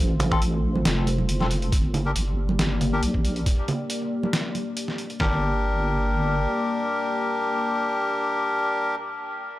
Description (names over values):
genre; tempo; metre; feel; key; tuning
deep dubstep; 138 BPM; 4/4; half-time; G minor; A4 = 440 Hz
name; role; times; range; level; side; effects
dark analog pad; sustained chords; 0.0-9.0 s; A3 to D5; -31 LUFS; left 1 dB; chorus
deep soft wobble bass; bass; 0.0-6.5 s; F1 to Bb1; -24 LUFS; equal; chorus
trip hop sampler-style drum kit; drums; 0.2-5.2 s; finger snaps, hi-hat, snare drum; -28 LUFS; equal; none
congas; percussion; 0.2-4.6 s; none; -30 LUFS; right 3 dB; dub echo
melodica; stabs; 0.3-9.0 s; C4 to Bb4; -26 LUFS; left 2 dB; dub echo
trip hop sampler-style drum kit; drums; 0.3-5.3 s; kick drum, snare drum; -23 LUFS; equal; none
room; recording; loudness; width
digital ambience; dry, gritty hardware recording; -22 LUFS; side -16 dB against mid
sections
0.0-1.7 A section; 1.7-5.2 B section; 5.2-8.7 C section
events
drop 0.0-1.7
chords
0.0 F; 1.7 Gm